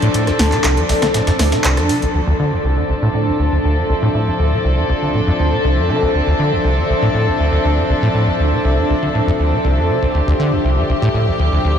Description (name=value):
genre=acid house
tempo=120 BPM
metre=4/4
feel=straight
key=D minor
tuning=A4 = 441 Hz
part: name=warm studio string section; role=sustained chords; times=0.0-11.8 s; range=F3 to A4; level=-19 LUFS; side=left 1 dB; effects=low-pass filter
part: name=acid bass, saw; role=riff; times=0.0-11.8 s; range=C2 to D3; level=-16 LUFS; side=equal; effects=tape echo
part: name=punchy analog drum machine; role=drums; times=0.0-2.1 s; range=handclaps, hi-hat, rim click, snare drum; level=-22 LUFS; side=equal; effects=none
part: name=ethereal airy pad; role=texture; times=0.0-11.8 s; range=D4 to E5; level=-21 LUFS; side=left 1 dB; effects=ensemble chorus, built-in reverb, phaser
part: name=dusty soul sampler-style drum kit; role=drums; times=0.1-11.8 s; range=hi-hat, snare drum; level=-32 LUFS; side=equal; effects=none
room=wet cathedral reverb, RT60 5.8 s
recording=dreamy mix soaked in reverb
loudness=-14 LUFS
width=side -8 dB against mid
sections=0.0-2.1 A section; 2.1-11.8 B section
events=none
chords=0.0 Dm7